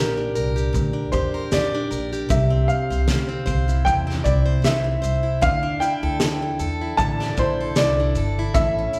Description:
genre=acoustic pop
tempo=77 BPM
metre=4/4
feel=swing 55% on 16ths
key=D minor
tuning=A4 = 440 Hz
part: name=dark upright piano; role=melody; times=0.0-9.0 s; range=Bb4 to A5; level=-26 LUFS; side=equal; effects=none
part: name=picked plugged-in steel-string acoustic guitar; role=accompaniment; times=0.0-9.0 s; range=A2 to C5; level=-29 LUFS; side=equal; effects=none
part: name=upright bass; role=bass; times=0.0-8.9 s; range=G1 to F2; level=-26 LUFS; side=equal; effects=none
part: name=loose indie drum kit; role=drums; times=0.4-9.0 s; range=kick drum, shaker, snare drum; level=-28 LUFS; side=equal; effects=none
room=wet recital hall reverb, RT60 1.2 s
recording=recorded in a church or concert hall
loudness=-21 LUFS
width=mono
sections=0.0-9.0 A section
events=none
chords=0.0 Gm/Bb; 2.3 C; 5.4 Dsus2

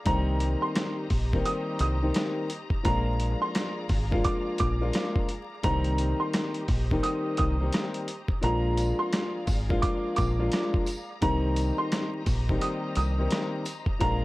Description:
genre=hip hop, boom-bap hip-hop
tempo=86 BPM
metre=4/4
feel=swing 62% on 16ths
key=C minor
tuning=A4 = 442 Hz
part: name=dark baby grand piano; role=accompaniment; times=0.0-14.2 s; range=Eb3 to F4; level=-30 LUFS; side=left 2 dB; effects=cassette tape, high-pass filter, low-pass filter
part: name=rich studio string section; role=sustained chords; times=0.0-14.2 s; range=G4 to Bb5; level=-41 LUFS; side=left 1 dB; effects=high-pass filter, low-pass filter
part: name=dark upright piano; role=melody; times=0.1-14.2 s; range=Bb5 to Eb6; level=-33 LUFS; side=right 2 dB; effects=high-pass filter, low-pass filter, ping-pong delay
part: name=deep dub fingered electric bass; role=bass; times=0.1-14.2 s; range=Ab1 to C2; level=-27 LUFS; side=equal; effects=none
part: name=dusty soul sampler-style drum kit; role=drums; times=0.1-14.2 s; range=hi-hat, kick drum, rim click, snare drum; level=-29 LUFS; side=equal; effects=overdrive
part: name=tambourine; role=percussion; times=8.8-13.9 s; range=none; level=-46 LUFS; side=right 2 dB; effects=none
room=studio reverb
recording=worn, warbling old tape, cassette tape, vinyl crackle, warbly pitch drift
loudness=-25 LUFS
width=side -19 dB against mid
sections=0.0-14.2 A section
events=kick muted 8.4-9.1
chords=0.1 Cm7; 2.8 Bb7; 5.6 Cm7; 8.4 Bb7; 11.2 Cm7

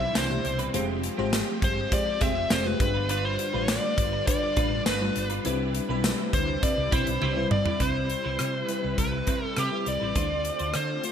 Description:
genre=1980s-style pop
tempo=102 BPM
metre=4/4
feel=straight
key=C major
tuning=A4 = 445 Hz
part: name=smooth overdriven lead guitar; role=melody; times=0.0-11.1 s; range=G4 to E5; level=-29 LUFS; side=equal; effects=shimmer reverb, ping-pong delay
part: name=FM electric piano with soft pad layer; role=accompaniment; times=0.0-11.1 s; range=G2 to B5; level=-31 LUFS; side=left 3 dB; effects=chorus, shimmer reverb
part: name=string machine, violas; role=sustained chords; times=0.0-11.1 s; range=C3 to G4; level=-36 LUFS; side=equal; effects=ensemble chorus, shimmer reverb
part: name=twelve-string electric guitar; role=riff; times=0.0-10.9 s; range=Ab3 to C5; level=-36 LUFS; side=right 5 dB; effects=ensemble chorus, shimmer reverb
part: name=woody fretless electric bass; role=bass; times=0.0-11.0 s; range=F1 to D3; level=-32 LUFS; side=equal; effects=ensemble chorus
part: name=modern studio drum kit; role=drums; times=0.2-11.1 s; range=hi-hat, kick drum, rim click, snare drum, tambourine, toms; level=-28 LUFS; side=equal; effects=gated reverb
room=moderate plate reverb, RT60 1.5 s, small room ambience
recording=bright 1980s-style digital production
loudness=-24 LUFS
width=side -8 dB against mid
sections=0.0-7.8 A section; 7.8-11.1 B section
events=drum fill 7.2-7.8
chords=0.0 Cmaj7; 0.7 Fmadd9; 2.8 G7; 5.5 Cmaj7; 10.2 Dm7

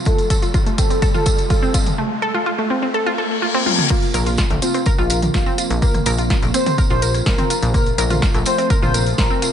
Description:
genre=melodic techno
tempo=125 BPM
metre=4/4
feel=straight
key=unclear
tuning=A4 = 440 Hz
part: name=lush unison pad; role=sustained chords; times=0.0-9.5 s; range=C3 to F4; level=-29 LUFS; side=right 2 dB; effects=chorus, phaser, sidechain pumping
part: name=riser and reverse cymbal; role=sound effects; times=0.0-3.9 s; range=none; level=-24 LUFS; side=left 2 dB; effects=none
part: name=expressive synth lead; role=melody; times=0.1-9.5 s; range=F4 to C5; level=-23 LUFS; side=left 1 dB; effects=wide subtle chorus, sidechain pumping, digital delay
part: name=wide unison pluck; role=arpeggios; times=0.1-9.5 s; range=A3 to Bb4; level=-22 LUFS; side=equal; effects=sidechain pumping, ping-pong delay
part: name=electronic kick drum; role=drums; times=0.1-9.3 s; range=none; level=-18 LUFS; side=equal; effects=none
part: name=punchy analog drum machine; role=drums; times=0.1-9.5 s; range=crash cymbal, hi-hat, rim click, snare drum, toms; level=-25 LUFS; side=left 2 dB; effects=none
part: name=tambourine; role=percussion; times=0.1-9.5 s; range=none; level=-28 LUFS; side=right 3 dB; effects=none
part: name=plucky analog bass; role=bass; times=4.1-9.3 s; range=Bb1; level=-20 LUFS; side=equal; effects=sidechain pumping
room=light reverb, digital ambience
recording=nothing above 10.4 kHz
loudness=-15 LUFS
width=side -9 dB against mid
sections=0.0-3.9 A section; 3.9-9.5 B section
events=build-up 0.0-3.9; drum fill 0.0-2.0, 3.7; riser 0.0-3.9; filter sweep on synth arpeggio sound 0.0-3.9; filter sweep on analog synth lead 0.0-3.9; reverse cymbal 2.9-3.9; drop 3.9-9.5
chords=0.0 F; 3.9 Bbsus2

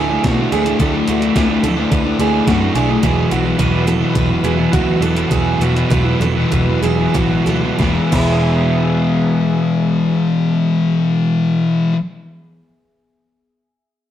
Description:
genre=rock, shoegaze and dream pop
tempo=91-108 BPM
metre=4/4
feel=straight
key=E mixolydian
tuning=A4 = 441 Hz
part: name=lush unison pad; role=sustained chords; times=0.0-11.2 s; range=B3 to E6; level=-28 LUFS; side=left 1 dB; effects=chorus
part: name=picked twelve-string acoustic guitar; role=arpeggios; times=0.0-8.8 s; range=E4 to B4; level=-23 LUFS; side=right 8 dB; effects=none
part: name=crunchy overdriven guitar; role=riff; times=0.0-11.9 s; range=D3 to E4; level=-20 LUFS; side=right 6 dB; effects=none
part: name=thick fuzz guitar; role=riff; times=0.0-11.9 s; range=E2 to D4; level=-17 LUFS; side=left 4 dB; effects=distortion
part: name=vintage muted picked electric bass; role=bass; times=0.0-11.9 s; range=E1 to B2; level=-21 LUFS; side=equal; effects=none
part: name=gated 80s digital drum machine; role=drums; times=0.2-8.3 s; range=crash cymbal, hi-hat, kick drum, snare drum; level=-20 LUFS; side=equal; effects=gated reverb, gated reverb snare, overdrive
room=moderate stone room reverb, RT60 1.3 s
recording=rough rehearsal-room recording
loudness=-13 LUFS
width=side -11 dB against mid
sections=0.0-7.8 A section; 7.8-10.4 B section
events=slowing down 3.0-7.8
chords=0.0 Dsus2; 3.0 Esus2; 7.8 E

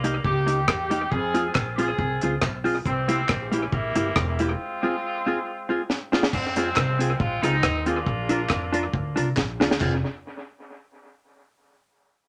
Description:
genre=ska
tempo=138 BPM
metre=4/4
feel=swing 53% on 8ths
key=F minor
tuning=A4 = 439 Hz
part: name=clear horn section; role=melody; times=0.0-9.4 s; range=E3 to Ab4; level=-30 LUFS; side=equal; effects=none
part: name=hollow-body jazz guitar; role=accompaniment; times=0.0-10.0 s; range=Bb3 to Bb4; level=-28 LUFS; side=equal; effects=none
part: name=upright bass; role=bass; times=0.0-10.0 s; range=E1 to F2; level=-31 LUFS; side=equal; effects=none
part: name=deep reggae drum kit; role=drums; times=0.0-9.9 s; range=crash cymbal, hi-hat, kick drum, rim click, snare drum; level=-28 LUFS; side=equal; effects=dub echo
part: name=group handclap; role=percussion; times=0.7-10.0 s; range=none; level=-35 LUFS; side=equal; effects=none
room=moderate studio reverb, RT60 0.5 s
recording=none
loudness=-24 LUFS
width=mono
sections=0.0-6.3 A section; 6.3-9.8 B section; 9.8-11.5 C section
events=drum fill 5.9-6.3, 9.4-9.8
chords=0.0 Eb; 1.1 Fm; 2.9 C7; 4.6 Fm; 8.1 Bb; 9.8 Fm

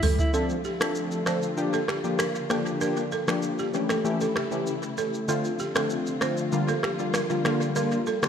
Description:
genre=afrobeats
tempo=97 BPM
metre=4/4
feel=straight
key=D minor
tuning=A4 = 440 Hz
part: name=warm studio string section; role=sustained chords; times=0.0-8.3 s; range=C#3 to F4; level=-35 LUFS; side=left 2 dB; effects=none
part: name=balafon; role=riff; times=0.0-8.2 s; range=G4 to C5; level=-30 LUFS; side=right 6 dB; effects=tape echo
part: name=afro-pop drum kit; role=drums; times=0.0-8.3 s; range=finger snaps, hi-hat, rim click, shaker, toms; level=-30 LUFS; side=equal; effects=tape echo
part: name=warm analog keys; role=accompaniment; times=0.3-8.3 s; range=D3 to A4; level=-27 LUFS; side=left 2 dB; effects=chorus, tape echo
room=moderate echo chamber reverb, RT60 2.0 s, studio ambience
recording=echo-heavy mix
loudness=-24 LUFS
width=side -8 dB against mid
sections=0.3-8.3 A section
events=drum fill 0.0-0.3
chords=0.3 Dm7; 1.6 Bb6; 3.7 A7; 5.3 Dm7; 6.5 Bb6

